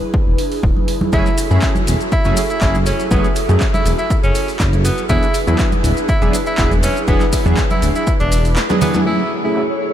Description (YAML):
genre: deep house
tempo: 121 BPM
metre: 4/4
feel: swing 53% on 16ths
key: F# minor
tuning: A4 = 440 Hz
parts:
  - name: airy breathy pad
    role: sustained chords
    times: 0.0-9.9 s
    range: D4 to B4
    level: -24 LUFS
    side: equal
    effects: chorus, vintage 12-bit sampler grit, sidechain pumping
  - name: electronic kick drum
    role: drums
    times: 0.1-8.2 s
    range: none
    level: -18 LUFS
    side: equal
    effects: overdrive
  - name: smooth synth bass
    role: bass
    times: 0.3-8.6 s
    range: D1 to F#2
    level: -17 LUFS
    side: equal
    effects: sidechain pumping
  - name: punchy analog drum machine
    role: drums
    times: 0.4-9.8 s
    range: handclaps, hi-hat, snare drum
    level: -26 LUFS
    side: equal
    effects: overdrive, low-pass filter on hats, low-pass filter on snare, low-pass filter on room
  - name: congas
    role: percussion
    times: 0.8-9.0 s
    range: none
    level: -24 LUFS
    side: right 3 dB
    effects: none
  - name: bright tenor saxophone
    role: melody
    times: 1.1-9.6 s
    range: B3 to E4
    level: -22 LUFS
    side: equal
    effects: tape echo
  - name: chorused polysynth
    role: stabs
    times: 1.1-9.7 s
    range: F#3 to G#4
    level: -21 LUFS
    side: right 1 dB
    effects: sidechain pumping, ping-pong delay
  - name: maracas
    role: percussion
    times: 1.1-9.0 s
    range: none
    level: -30 LUFS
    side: left 3 dB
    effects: none
  - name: soft string machine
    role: texture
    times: 9.1-9.9 s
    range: C#5 to C#6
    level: -27 LUFS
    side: left 1 dB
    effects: phaser, ensemble chorus
room: light reverb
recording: none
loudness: -13 LUFS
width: side -10 dB against mid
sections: 0.0-9.1 A section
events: kick drops out 8.6-9.1; drum fill 8.6-9.1; band accent 8.9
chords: 0.0 E7; 1.1 F#m9; 5.1 E7; 9.1 F#m9